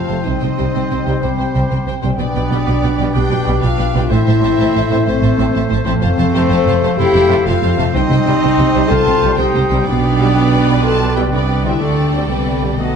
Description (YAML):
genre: cinematic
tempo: 125 BPM (dotted quarters)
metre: 12/8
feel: straight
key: G mixolydian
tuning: A4 = 440 Hz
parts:
  - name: warm symphonic violin section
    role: melody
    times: 0.0-13.0 s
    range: A4 to A5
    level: -26 LUFS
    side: left 2 dB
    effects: none
  - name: clear oboe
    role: second line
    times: 0.0-13.0 s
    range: C5 to D#5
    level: -30 LUFS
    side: right 1 dB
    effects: none
  - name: mellow clarinet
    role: second line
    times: 0.0-13.0 s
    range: A4 to C5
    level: -28 LUFS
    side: left 1 dB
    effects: none
  - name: mellow hollow concert flute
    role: second line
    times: 0.0-13.0 s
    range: E5 to A5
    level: -27 LUFS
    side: left 2 dB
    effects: none
  - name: mellow French horn section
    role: sustained chords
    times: 0.0-13.0 s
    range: A3 to A4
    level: -18 LUFS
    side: left 3 dB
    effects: none
  - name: concert harp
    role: arpeggios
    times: 0.0-13.0 s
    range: F2 to D#5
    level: -23 LUFS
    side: left 10 dB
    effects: none
  - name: mellow trumpet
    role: stabs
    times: 0.0-13.0 s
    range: F#3 to F4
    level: -24 LUFS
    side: right 2 dB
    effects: none
  - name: rich symphonic violin section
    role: second line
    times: 0.1-13.0 s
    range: C5 to A5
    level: -31 LUFS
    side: equal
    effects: none
  - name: rich studio viola section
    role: accompaniment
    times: 0.1-13.0 s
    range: A4 to D#5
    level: -27 LUFS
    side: right 1 dB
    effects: none
  - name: bright trombone section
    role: sustained chords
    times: 0.1-12.7 s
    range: A2 to C4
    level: -27 LUFS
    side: right 4 dB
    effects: none
  - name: rich symphonic cello section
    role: bass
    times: 0.1-13.0 s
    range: F2 to D3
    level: -20 LUFS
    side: right 4 dB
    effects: none
  - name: rich symphonic double bass section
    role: bass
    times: 0.1-13.0 s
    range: F1 to D2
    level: -19 LUFS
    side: right 3 dB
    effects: none
room: moderate scoring stage reverb, RT60 1.8 s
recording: dark, warm production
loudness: -12 LUFS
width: side -6 dB against mid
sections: 0.0-13.0 A section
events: none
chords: 0.3 Cm; 2.2 G/B; 4.1 Am; 6.0 F; 7.9 Cm; 9.9 G/B; 11.8 Dsus4